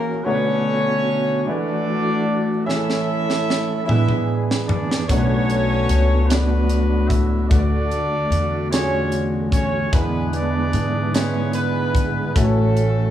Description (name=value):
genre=slow gospel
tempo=50 BPM (dotted quarters)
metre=6/8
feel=straight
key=unclear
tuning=A4 = 440 Hz
part: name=mellow horn section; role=melody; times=0.0-13.1 s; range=F#3 to E5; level=-23 LUFS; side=equal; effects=none
part: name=warm concert grand piano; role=accompaniment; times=0.0-13.1 s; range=A2 to D5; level=-25 LUFS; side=left 2 dB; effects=none
part: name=tonewheel organ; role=sustained chords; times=0.0-13.1 s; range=D3 to A4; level=-25 LUFS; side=right 3 dB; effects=slow rotary speaker, chorus vibrato
part: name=crisp fusion drum kit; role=drums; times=2.7-13.0 s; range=hi-hat, kick drum, snare drum, toms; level=-22 LUFS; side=equal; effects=none
part: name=upright bass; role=bass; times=5.1-13.1 s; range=A1 to G#2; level=-21 LUFS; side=equal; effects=none
room=light reverb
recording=small room ambience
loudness=-17 LUFS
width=side -11 dB against mid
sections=0.0-13.1 A section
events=drum fill 2.7-5.1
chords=0.3 Bm7; 1.5 E9sus4; 2.7 A/E; 3.9 E7; 5.1 Bm7; 7.5 Dmaj7; 9.9 E7; 12.4 A6